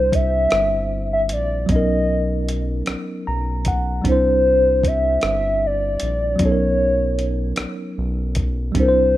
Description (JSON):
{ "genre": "slow six-eight R&B", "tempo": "51 BPM (dotted quarters)", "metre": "6/8", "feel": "straight", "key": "unclear", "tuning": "A4 = 437 Hz", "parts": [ { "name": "hollow clarinet-like synth lead", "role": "melody", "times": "0.0-9.2 s", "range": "C5 to E5", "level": "-19 LUFS", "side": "left 1 dB", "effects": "chorus" }, { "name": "mellow tine electric piano", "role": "accompaniment", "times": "0.0-9.2 s", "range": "F#3 to A#5", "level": "-23 LUFS", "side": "right 1 dB", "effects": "medium stereo tremolo" }, { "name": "round analog bass", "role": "bass", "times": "0.0-9.2 s", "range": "G1 to C2", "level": "-23 LUFS", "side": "equal", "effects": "none" }, { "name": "dusty soul sampler-style drum kit", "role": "drums", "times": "0.1-8.9 s", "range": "hi-hat, kick drum, rim click", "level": "-23 LUFS", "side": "equal", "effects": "none" } ], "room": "light reverb, digital ambience", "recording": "rough home demo mix", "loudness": "-17 LUFS", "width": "side -14 dB against mid", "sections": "0.0-9.2 A section", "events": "tine electric piano fill 2.9-4.0", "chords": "0.0 Cadd9; 1.7 Bmaj9; 4.0 Cadd9; 6.4 Bmaj9", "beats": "0.51 | 1.69 2.87 | 4.04 5.22 | 6.40 7.57 | 8.75" }